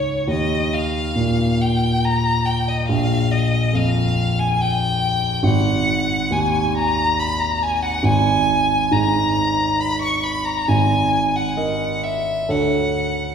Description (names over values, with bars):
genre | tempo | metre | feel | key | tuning
classical, impressionist duo for violin and grand piano | 69 BPM | 3/4 | rubato | Bb dorian | A4 = 440 Hz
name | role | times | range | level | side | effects
rich violin | melody | 0.0-13.3 s | Db5 to C#6 | -20 LUFS | left 1 dB | none
dark baby grand piano | accompaniment | 0.0-13.3 s | G#1 to D#5 | -19 LUFS | equal | none
room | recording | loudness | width
wet concert hall reverb, RT60 1.7 s | heard from further back in the room | -17 LUFS | side -7 dB against mid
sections
0.0-13.3 A section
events
none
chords
0.3 Ebsus2; 2.9 Bb5; 5.4 G#5; 8.0 N.C.; 10.7 G#sus2; 12.5 Dmaj7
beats
| 0.29 1.17 2.04 | 2.89 3.74 4.59 | 5.45 6.32 7.18 | 8.04 8.91 9.79 | 10.68 11.57 12.49